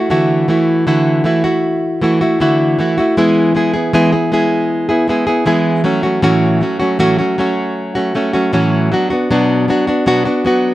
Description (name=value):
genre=pop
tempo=78 BPM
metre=4/4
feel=straight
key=unclear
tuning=A4 = 441 Hz
part: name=nylon-string guitar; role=solo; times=0.0-10.7 s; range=A2 to G#4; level=-12 LUFS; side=equal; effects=none
room=light reverb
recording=none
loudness=-12 LUFS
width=side -15 dB against mid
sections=0.0-3.2 A section; 3.2-10.7 B section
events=none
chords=0.0 Dadd9; 3.2 E; 5.8 A6; 8.9 Bm